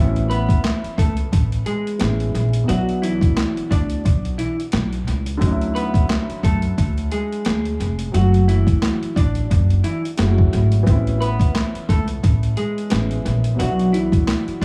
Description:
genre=hip hop, boom-bap hip-hop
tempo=88 BPM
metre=4/4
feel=swing 55% on 16ths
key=A major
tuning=A4 = 440 Hz
part: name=dark grand piano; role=accompaniment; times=0.0-14.6 s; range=B2 to F#4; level=-29 LUFS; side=equal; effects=cassette tape, high-pass filter, low-pass filter, analog delay
part: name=upright bass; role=bass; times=0.0-14.6 s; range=F1 to F#2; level=-22 LUFS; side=equal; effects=none
part: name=boom bap sampler-style drum kit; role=drums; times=0.2-14.6 s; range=handclaps, hi-hat, kick drum, snare drum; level=-22 LUFS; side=equal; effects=analog delay
part: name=semi-hollow electric guitar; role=melody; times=0.3-14.6 s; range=E3 to D5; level=-27 LUFS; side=equal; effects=high-pass filter, low-pass filter, analog delay
room=small room ambience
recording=echo-heavy mix, vinyl crackle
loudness=-19 LUFS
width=mono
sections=0.0-14.6 A section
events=none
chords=0.0 Aadd9; 2.7 Bm; 5.4 Dmaj7; 8.1 F#m; 10.9 Aadd9; 13.6 Bm

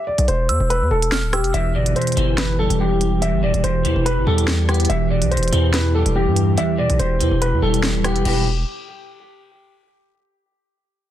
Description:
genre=hip hop, drill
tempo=143 BPM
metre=4/4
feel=half-time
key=E minor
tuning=A4 = 440 Hz
part: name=dark baby grand piano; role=melody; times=0.0-8.4 s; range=G4 to E5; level=-23 LUFS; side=equal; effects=low-pass filter
part: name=distorted 808-style bass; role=bass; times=0.2-8.6 s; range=D1 to G2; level=-20 LUFS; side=equal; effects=distortion
part: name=drill drum kit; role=drums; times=0.2-8.4 s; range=crash cymbal, hi-hat, rim click, snare drum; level=-25 LUFS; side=equal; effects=vintage 12-bit sampler grit
part: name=glassy synth bell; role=second line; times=0.5-1.5 s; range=E6 to F6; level=-28 LUFS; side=right 3 dB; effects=chorus, tape echo
part: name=electric guitar at the edge of break-up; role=accompaniment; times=1.5-8.4 s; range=E2 to B3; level=-21 LUFS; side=right 1 dB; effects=ensemble chorus, low-pass filter
part: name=dark French horn section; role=sustained chords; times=1.5-8.4 s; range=B2 to G4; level=-32 LUFS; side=right 1 dB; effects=none
room=little or no reverb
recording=dense, heavily limited modern master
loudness=-16 LUFS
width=side -12 dB against mid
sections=0.0-1.5 A section; 1.5-8.3 B section; 8.3-9.9 C section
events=break 0.0-1.5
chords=0.0 N.C.; 1.5 Em

